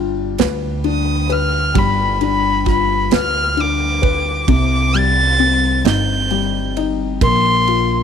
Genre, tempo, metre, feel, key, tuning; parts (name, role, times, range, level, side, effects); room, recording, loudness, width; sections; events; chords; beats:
six-eight pop ballad; 44 BPM (dotted quarters); 6/8; straight; A4 = 440 Hz
felt-muted upright piano; accompaniment; 0.0-8.0 s; C3 to B4; -20 LUFS; left 11 dB
upright bass; bass; 0.0-8.0 s; G1 to D2; -20 LUFS; right 2 dB
modern studio drum kit; drums; 0.4-7.9 s; kick drum, ride cymbal, snare drum; -18 LUFS; right 6 dB
warm violin; melody; 0.9-8.0 s; B5 to A6; -18 LUFS; left 1 dB
small room ambience; 1960s-style stereo with parts hard left and right; -14 LUFS; side -7 dB against mid
0.0-8.0 A section
0.0 G7; 4.5 Cm; 7.2 Bbsus2
0.39 | 1.76 3.12 | 4.48 5.85 | 7.21